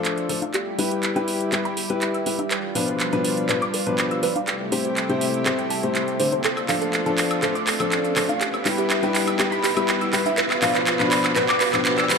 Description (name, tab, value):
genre	progressive house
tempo	122 BPM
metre	4/4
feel	straight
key	unclear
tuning	A4 = 440 Hz
part	lush unison pad	sustained chords	0.0-12.2 s	C3 to G4	-28 LUFS	right 1 dB	chorus
part	warm baby grand piano	stabs	0.0-12.2 s	B2 to C5	-25 LUFS	left 3 dB	ping-pong delay
part	round analog bass	bass	0.0-12.2 s	none	barely audible	none	none
part	house drum kit	drums	0.0-12.2 s	handclaps, hi-hat, shaker, woodblock	-24 LUFS	right 2 dB	high-pass filter on snare, high-pass filter on hats, high-pass filter on perc, high-pass filter on room
part	riser	sound effects	0.8-12.2 s	none	-34 LUFS	right 3 dB	none
part	soft round pluck	arpeggios	0.2-12.2 s	G4 to E6	-27 LUFS	right 1 dB	analog chorus, ping-pong delay
part	congas	percussion	0.4-11.1 s	none	-32 LUFS	left 4 dB	overdrive
room	wet lush hall reverb, RT60 1.5 s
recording	none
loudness	-20 LUFS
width	side -5 dB against mid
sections	0.0-12.2 A section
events	build-up 0.0-12.2; drum fill 0.0-12.2; filter sweep on synth pluck 0.0-12.2; riser 0.8-12.2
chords	0.0 Dm; 0.5 Em; 2.5 Bdim; 4.5 Am7/C; 6.4 Dm; 8.4 Em; 10.4 Bdim